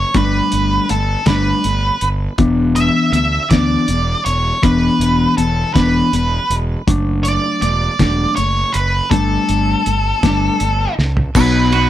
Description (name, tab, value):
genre	indie rock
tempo	54 BPM (dotted quarters)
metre	6/8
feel	straight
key	E dorian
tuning	A4 = 440 Hz
part	octave-fuzz lead guitar	melody	0.0-11.9 s	A4 to E5	-18 LUFS	right 1 dB	distortion
part	fuzz fingered electric bass	bass	0.0-11.9 s	E1 to D2	-18 LUFS	right 1 dB	overdrive
part	mellow electric guitar	riff	0.1-11.9 s	B2 to F#4	-17 LUFS	left 3 dB	none
part	cloth-damped thuddy drum kit	drums	0.1-11.9 s	crash cymbal, hi-hat, kick drum, ride cymbal, snare drum, toms	-18 LUFS	right 1 dB	none
part	overdriven combo organ	sustained chords	11.3-11.9 s	D#4 to B5	-27 LUFS	right 3 dB	none
part	raw garage guitar	riff	11.4-11.9 s	F#3 to F#4	-20 LUFS	right 11 dB	overdrive, lush chorus
part	tambourine	percussion	11.4-11.5 s	none	-30 LUFS	right 13 dB	none
room	light reverb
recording	dark, warm production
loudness	-13 LUFS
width	side -12 dB against mid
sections	0.0-11.4 A section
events	drum fill 11.0-11.4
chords	0.1 Gsus2; 2.4 E5; 6.9 E9sus4; 9.1 Gsus2; 11.4 B